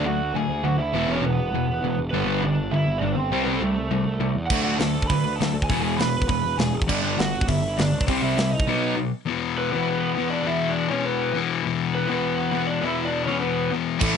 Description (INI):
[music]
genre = punk rock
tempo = 202 BPM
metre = 4/4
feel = straight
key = unclear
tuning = A4 = 440 Hz
[part]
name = lead guitar through a small cranked amp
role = melody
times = 0.0-13.7 s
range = A3 to B5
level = -27 LUFS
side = right 2 dB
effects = overdrive
[part]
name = crunchy overdriven guitar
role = riff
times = 0.0-14.2 s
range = E2 to D4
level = -25 LUFS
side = left 8 dB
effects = none
[part]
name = crunchy overdriven guitar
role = riff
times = 0.0-9.1, 14.0-14.2 s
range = G2 to E4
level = -28 LUFS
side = right 14 dB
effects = none
[part]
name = fuzz picked electric bass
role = bass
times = 0.0-8.6, 14.0-14.1 s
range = E1 to E2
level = -28 LUFS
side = right 1 dB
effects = overdrive
[part]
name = tight metal drum kit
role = drums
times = 4.5-8.7, 14.0-14.1 s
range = crash cymbal, hi-hat, kick drum, snare drum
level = -26 LUFS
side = equal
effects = none
[part]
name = heavy high-gain guitar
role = riff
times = 14.0-14.2 s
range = A2 to A3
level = -27 LUFS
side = equal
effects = distortion
[sound]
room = light reverb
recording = nothing above 11.0 kHz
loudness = -21 LUFS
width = side -7 dB against mid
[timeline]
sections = 0.0-9.3 A section; 9.3-14.2 B section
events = break 8.7-9.3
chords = 0.0 D; 0.9 E; 2.1 G; 3.3 C; 4.5 D; 5.7 E; 6.9 G5; 8.1 C; 8.7 B; 9.3 E5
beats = 0.05 0.35 0.64 | 0.94 1.24 1.54 1.83 | 2.13 2.43 2.73 3.02 | 3.32 3.62 3.92 4.22 | 4.51 4.81 5.11 5.41 | 5.71 6.00 6.30 6.60 | 6.89 7.19 7.49 7.79 | 8.08 8.38 8.68 8.97 | 9.27 9.57 9.87 10.16 | 10.46 10.75 11.05 11.35 | 11.64 11.94 12.23 12.53 | 12.83 13.12 13.42 13.71 | 14.01